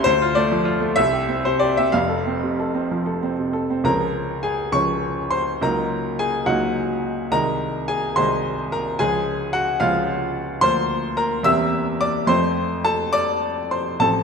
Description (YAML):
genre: classical, romantic character piece for solo piano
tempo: 61-74 BPM (dotted quarters)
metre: 6/8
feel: rubato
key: F major, Db major from 3.9 s, F major from 10.6 s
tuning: A4 = 440 Hz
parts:
  - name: clear baby grand piano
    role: solo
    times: 0.0-14.2 s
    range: F1 to E6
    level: -19 LUFS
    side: equal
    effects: none
room: moderate concert hall reverb, RT60 2.2 s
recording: none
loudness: -19 LUFS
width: side -5 dB against mid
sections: 0.0-3.9 A section; 3.9-14.2 B section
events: none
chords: 0.1 Dm; 1.0 C; 1.9 F; 3.9 Db; 5.6 Ebm7/Db; 7.3 Ab/C; 9.0 Db; 10.6 Bb/D; 11.5 C7/E; 12.3 F